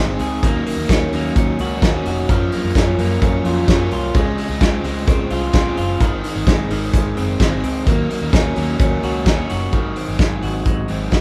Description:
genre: jangly indie pop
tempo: 129 BPM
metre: 4/4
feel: straight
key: Ab mixolydian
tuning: A4 = 441 Hz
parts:
  - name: crunchy overdriven guitar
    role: accompaniment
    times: 0.0-11.2 s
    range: Ab2 to Bb4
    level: -29 LUFS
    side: equal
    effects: none
  - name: reed electric piano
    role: accompaniment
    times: 0.0-9.8 s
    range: Gb3 to C5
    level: -30 LUFS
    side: equal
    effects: fast tremolo
  - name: electric guitar through a small old amp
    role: arpeggios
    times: 0.0-11.2 s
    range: Eb3 to Ab4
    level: -25 LUFS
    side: equal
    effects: none
  - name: vintage muted fingered electric bass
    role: bass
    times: 0.0-11.2 s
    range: F1 to Gb2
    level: -26 LUFS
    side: equal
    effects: none
  - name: loose indie drum kit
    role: drums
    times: 0.2-11.2 s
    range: hi-hat, kick drum, ride cymbal, snare drum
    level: -21 LUFS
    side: equal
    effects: none
room: moderate large studio reverb, RT60 1.3 s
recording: band playing live in one room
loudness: -18 LUFS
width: mono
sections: 0.0-9.7 A section; 9.7-11.2 B section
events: none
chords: 0.4 Ebm7; 2.3 Gbmaj7; 4.1 Dbmaj7; 6.0 Ab; 7.9 Ebm7; 9.7 Ab7

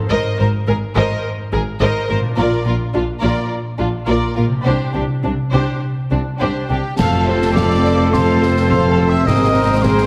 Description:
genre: cinematic, heroic adventure film score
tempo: 106 BPM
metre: 4/4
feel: straight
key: unclear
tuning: A4 = 442 Hz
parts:
  - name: concert harp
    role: arpeggios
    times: 0.0-10.1 s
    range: F2 to D5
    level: -26 LUFS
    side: equal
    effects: none
  - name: rich symphonic violin section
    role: melody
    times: 0.1-10.1 s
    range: D4 to F5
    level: -28 LUFS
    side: equal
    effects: none
  - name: warm symphonic violin section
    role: second line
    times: 0.1-10.1 s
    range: C4 to E5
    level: -28 LUFS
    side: equal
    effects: none
  - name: rich symphonic viola section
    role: accompaniment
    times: 0.1-10.1 s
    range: A3 to C5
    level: -25 LUFS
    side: equal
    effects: none
  - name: rich studio cello section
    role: bass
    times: 0.1-10.1 s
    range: F2 to C3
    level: -24 LUFS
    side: equal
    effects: none
  - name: rich symphonic double bass section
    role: bass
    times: 0.1-10.1 s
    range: F1 to C2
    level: -24 LUFS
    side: equal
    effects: none
  - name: hollow concert flute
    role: second line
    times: 6.7-10.1 s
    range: G5 to E6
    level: -24 LUFS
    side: equal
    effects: none
  - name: clear oboe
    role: second line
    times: 7.0-10.1 s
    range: Bb4 to C5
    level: -29 LUFS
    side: equal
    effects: none
  - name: mellow clarinet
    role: second line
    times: 7.0-10.1 s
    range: C4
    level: -28 LUFS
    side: equal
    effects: none
  - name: mellow French horn section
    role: sustained chords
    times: 7.0-10.1 s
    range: Eb3 to C4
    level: -25 LUFS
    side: equal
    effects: none
  - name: dark trumpet section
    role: stabs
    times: 7.0-10.1 s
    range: A4 to Bb4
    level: -25 LUFS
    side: equal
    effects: none
  - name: concert snare drum, clash cymbals and concert bass drum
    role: drums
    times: 7.0-10.1 s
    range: none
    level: -25 LUFS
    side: equal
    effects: none
room: moderate recital hall reverb, RT60 1.5 s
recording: heavily compressed radio sound, multiband compression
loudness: -17 LUFS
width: mono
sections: 0.0-7.0 A section; 7.0-10.1 B section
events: none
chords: 0.1 Abadd9; 2.4 Bb; 4.7 Csus2; 7.0 F; 9.3 Abadd9

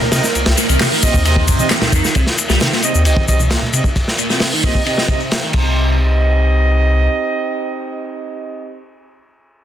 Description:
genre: breakbeat, breaks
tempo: 133 BPM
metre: 4/4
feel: straight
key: unclear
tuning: A4 = 441 Hz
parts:
  - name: deep dark ambient pad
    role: sustained chords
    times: 0.0-2.1 s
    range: Eb4 to Bb4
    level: -26 LUFS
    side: right 1 dB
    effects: chorus, built-in reverb, sidechain pumping
  - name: congas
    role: percussion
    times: 0.0-3.7 s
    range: none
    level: -25 LUFS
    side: right 1 dB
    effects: none
  - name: dark brass ensemble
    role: stabs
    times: 0.1-8.8 s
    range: C4 to Eb5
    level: -21 LUFS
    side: right 3 dB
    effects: low-pass filter, digital delay
  - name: saturated sub bass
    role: bass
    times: 0.1-7.1 s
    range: C2 to C3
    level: -15 LUFS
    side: equal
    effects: none
  - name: crunchy breakbeat drum kit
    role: drums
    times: 0.1-5.6 s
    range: crash cymbal, hi-hat, kick drum, ride cymbal, snare drum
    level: -17 LUFS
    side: equal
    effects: none
  - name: punchy analog drum machine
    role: drums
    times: 0.1-5.4 s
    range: handclaps, ride cymbal, shaker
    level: -22 LUFS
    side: left 3 dB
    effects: low-pass filter on perc, low-pass filter on cymbals, low-pass filter on snare, low-pass filter on room
  - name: crunchy overdriven guitar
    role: riff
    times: 0.6-6.0 s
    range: Bb2 to G3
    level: -21 LUFS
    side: equal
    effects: phaser, low-pass filter, digital delay
room: light reverb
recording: dense, heavily limited modern master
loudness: -13 LUFS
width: side -10 dB against mid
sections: 0.0-2.2 A section; 2.2-5.8 B section; 5.8-9.4 C section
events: drop 0.0-2.2; filter sweep on brass ensemble 2.2-5.8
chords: 0.0 Cm

